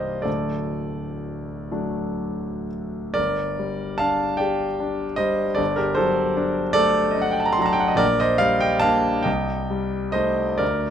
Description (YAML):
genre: classical, romantic nocturne for solo piano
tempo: 40-52 BPM (dotted quarters)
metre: 12/8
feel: rubato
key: G minor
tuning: A4 = 440 Hz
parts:
  - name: warm concert grand piano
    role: solo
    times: 0.0-10.9 s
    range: C1 to C6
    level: -20 LUFS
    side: equal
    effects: none
room: light reverb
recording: close, detailed microphones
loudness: -20 LUFS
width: side -9 dB against mid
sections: 0.0-3.2 A section; 3.2-10.9 B section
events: none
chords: 0.3 D; 3.2 Gm; 5.6 D/G; 8.0 Gm/Bb; 9.3 Am7b5/C